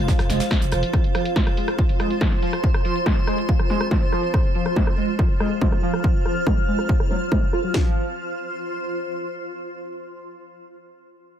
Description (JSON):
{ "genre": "driving peak-time techno", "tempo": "141 BPM", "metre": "4/4", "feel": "straight", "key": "F minor", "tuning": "A4 = 440 Hz", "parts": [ { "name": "growling 808-style bass", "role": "bass", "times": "0.0-0.8 s", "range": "F1", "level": "-25 LUFS", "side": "equal", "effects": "tube saturation, sidechain pumping, low-pass filter" }, { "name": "granular cloud pad", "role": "texture", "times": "0.0-9.4 s", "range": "F4 to F6", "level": "-27 LUFS", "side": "right 1 dB", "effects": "built-in reverb, sidechain pumping" }, { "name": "overdriven synth lead", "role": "riff", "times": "0.1-7.9 s", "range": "F3 to F4", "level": "-27 LUFS", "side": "equal", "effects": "distortion, phaser, wide subtle chorus, sidechain pumping, ping-pong delay" }, { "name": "damped 70s drum kit", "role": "drums", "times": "0.1-0.8 s", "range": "hi-hat, snare drum", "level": "-33 LUFS", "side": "right 3 dB", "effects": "high-pass filter on hats, high-pass filter on snare, high-pass filter on room" }, { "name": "punchy analog drum machine", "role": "drums", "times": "0.1-7.7 s", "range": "hi-hat, rim click, snare drum", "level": "-27 LUFS", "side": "equal", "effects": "low-pass filter on snare, sidechain pumping on hats, low-pass filter on hats, sidechain pumping on cymbals, low-pass filter on cymbals, low-pass filter on room" }, { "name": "techno drum kit", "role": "drums", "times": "0.1-7.8 s", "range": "kick drum, snare drum", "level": "-20 LUFS", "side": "equal", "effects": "none" } ], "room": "digital ambience", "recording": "none", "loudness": "-19 LUFS", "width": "side -10 dB against mid", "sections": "0.0-7.7 A section; 7.7-9.4 B section", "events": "filter sweep on drum 0.0-7.7; filter sweep on analog synth lead 0.0-7.7", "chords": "0.0 F5", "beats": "0.08 0.51 | 0.93 1.36 1.78 2.21 | 2.64 3.06 3.49 3.91 | 4.34 4.76 5.19 5.62 | 6.04 6.47 6.89 7.32 | 7.74 8.17 8.59 9.02" }